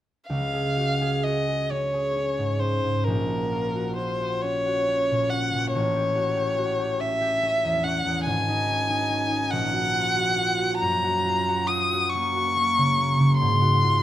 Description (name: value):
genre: classical, romantic duo for violin and harp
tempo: 42-49 BPM (dotted quarters)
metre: 6/8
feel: rubato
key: Db major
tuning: A4 = 443 Hz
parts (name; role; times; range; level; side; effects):
- warm violin; melody; 0.3-14.0 s; Bb4 to Eb6; -24 LUFS; left 1 dB; none
- concert harp; accompaniment; 0.3-14.0 s; Ab1 to Ab4; -25 LUFS; right 1 dB; none
room: moderate recital hall reverb, RT60 1.4 s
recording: close, detailed microphones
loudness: -22 LUFS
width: side -12 dB against mid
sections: 0.3-14.0 A section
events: none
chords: 0.3 Db; 3.1 Gb/Bb; 5.7 A7; 8.3 Ab5; 9.5 Gb/Bb; 10.8 Gb; 13.4 Ab7